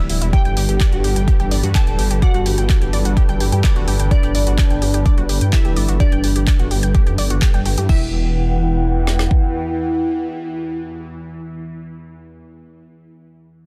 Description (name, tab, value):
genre	melodic techno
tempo	127 BPM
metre	4/4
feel	straight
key	E minor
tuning	A4 = 436 Hz
part	dark analog pad	sustained chords	0.0-12.4 s	G3 to G5	-30 LUFS	equal	chorus, sidechain pumping
part	dark detuned saw bass	bass	0.0-9.3 s	D1 to G2	-21 LUFS	equal	sidechain pumping
part	bowed-like drone	drone	0.0-12.4 s	E2 to E3	-36 LUFS	equal	none
part	unison pluck	arpeggios	0.1-8.1 s	E4 to G6	-31 LUFS	equal	sidechain pumping, digital delay
part	deep house drum kit	drums	0.1-8.0 s	crash cymbal, handclaps, hi-hat	-29 LUFS	equal	sidechain pumping on hats, sidechain pumping on cymbals
part	expressive synth lead	melody	0.3-12.4 s	D4 to A4	-27 LUFS	equal	lush chorus, sidechain pumping, digital delay
part	glassy wavetable pluck	second line	0.3-12.4 s	D5 to A5	-34 LUFS	equal	chorus, sidechain pumping, digital delay
part	deep house drum kit	drums	0.3-9.4 s	kick drum, snare drum	-18 LUFS	equal	none
room	little or no reverb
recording	dense, heavily limited modern master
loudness	-17 LUFS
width	mono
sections	0.0-7.9 A section; 7.9-11.7 B section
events	drop 0.0-7.9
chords	0.3 G; 7.9 Emadd9